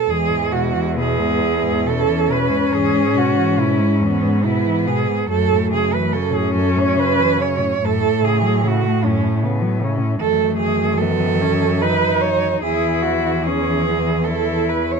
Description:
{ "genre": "classical, lyrical piece for cello ensemble", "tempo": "65-78 BPM", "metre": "3/4", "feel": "rubato", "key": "E major", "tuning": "A4 = 442 Hz", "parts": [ { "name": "muted cello", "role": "second line", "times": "0.0-15.0 s", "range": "B3 to C#5", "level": "-20 LUFS", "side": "right 8 dB", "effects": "none" }, { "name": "muted cello", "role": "melody", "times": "0.1-15.0 s", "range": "G#3 to E4", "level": "-22 LUFS", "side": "left 7 dB", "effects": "none" }, { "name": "muted cello", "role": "accompaniment", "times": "0.1-15.0 s", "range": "E2 to F#3", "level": "-24 LUFS", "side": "left 3 dB", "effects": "none" }, { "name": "muted cello", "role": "bass", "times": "0.1-15.0 s", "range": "E2 to A2", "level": "-22 LUFS", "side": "right 2 dB", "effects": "none" } ], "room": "light reverb", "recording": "close, detailed microphones", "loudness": "-16 LUFS", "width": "side -5 dB against mid", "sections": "0.1-15.0 A section", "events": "none", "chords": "0.1 E; 5.3 F#m7; 7.8 F#m; 10.2 D#dim/F#; 12.6 E" }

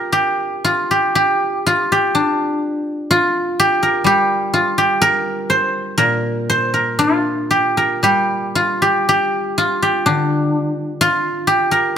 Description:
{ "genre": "chinese traditional, Chinese solo plucked strings", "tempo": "57-64 BPM", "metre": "2/4", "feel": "rubato", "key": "G yu mode", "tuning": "A4 = 443 Hz", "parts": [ { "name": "guzheng", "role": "solo", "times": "0.0-12.0 s", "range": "Bb2 to C5", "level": "-14 LUFS", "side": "equal", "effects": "none" } ], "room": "light reverb", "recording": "close, detailed microphones", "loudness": "-14 LUFS", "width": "side -8 dB against mid", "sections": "0.1-12.0 A section", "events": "none", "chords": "none" }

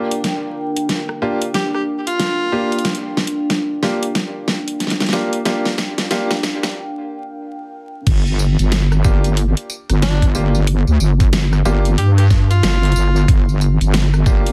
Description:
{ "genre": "glitch hop", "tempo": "92 BPM", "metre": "4/4", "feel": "swing 61% on 16ths", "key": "G minor pentatonic", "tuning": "A4 = 440 Hz", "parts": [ { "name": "clear grand piano", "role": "stabs", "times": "0.0-14.5 s", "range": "Bb3 to G4", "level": "-25 LUFS", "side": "equal", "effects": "sidechain pumping, digital delay" }, { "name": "deep dark ambient pad", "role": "texture", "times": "0.0-6.8 s", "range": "D4 to G5", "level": "-28 LUFS", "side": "equal", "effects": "chorus, built-in reverb, sidechain pumping" }, { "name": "dubstep drum kit", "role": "drums", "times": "0.1-14.5 s", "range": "crash cymbal, hi-hat, rim click, snare drum, tambourine", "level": "-24 LUFS", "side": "equal", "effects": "none" }, { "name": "clear tenor saxophone", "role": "melody", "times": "1.5-3.0, 10.0-13.4 s", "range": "D4 to G4", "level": "-26 LUFS", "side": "equal", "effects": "digital delay" }, { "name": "wobble bass", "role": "bass", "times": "8.1-14.5 s", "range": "G1 to G2", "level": "-16 LUFS", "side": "equal", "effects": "chorus" }, { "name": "electronic kick drum", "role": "drums", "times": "8.1-14.4 s", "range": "none", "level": "-16 LUFS", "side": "equal", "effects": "none" } ], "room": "moderate studio reverb, RT60 0.5 s", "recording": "dense, heavily limited modern master, vinyl crackle, high-pass filter", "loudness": "-17 LUFS", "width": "mono", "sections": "0.0-8.1 A section; 8.1-14.5 B section", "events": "build-up 0.0-8.1; drum fill 0.0-6.8; filter sweep 0.0-8.1; break 6.8-8.1; drop 8.1-14.5", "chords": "0.0 Gm7" }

